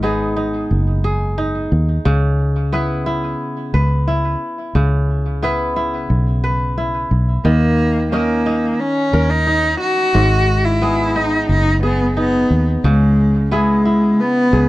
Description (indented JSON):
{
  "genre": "folktronica",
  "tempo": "89 BPM",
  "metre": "4/4",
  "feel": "straight",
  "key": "G# minor",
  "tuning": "A4 = 443 Hz",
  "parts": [
    { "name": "kora", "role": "arpeggios", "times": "0.0-14.7 s", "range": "G#2 to B4", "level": "-20 LUFS", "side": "equal", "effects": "tape echo" },
    { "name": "fingered electric bass", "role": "bass", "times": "0.0-14.7 s", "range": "F#1 to D#2", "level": "-17 LUFS", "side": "equal", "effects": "none" },
    { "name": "rich cello", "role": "melody", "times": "7.4-14.7 s", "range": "G#3 to F#4", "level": "-16 LUFS", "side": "equal", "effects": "none" }
  ],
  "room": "light reverb",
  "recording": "dry, close 1970s-style studio recording",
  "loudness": "-14 LUFS",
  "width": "side -17 dB against mid",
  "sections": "0.0-14.7 A section",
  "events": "none",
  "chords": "0.0 G#m7; 2.1 C#m7; 7.4 D#5; 10.1 G#m7; 12.8 C#m7"
}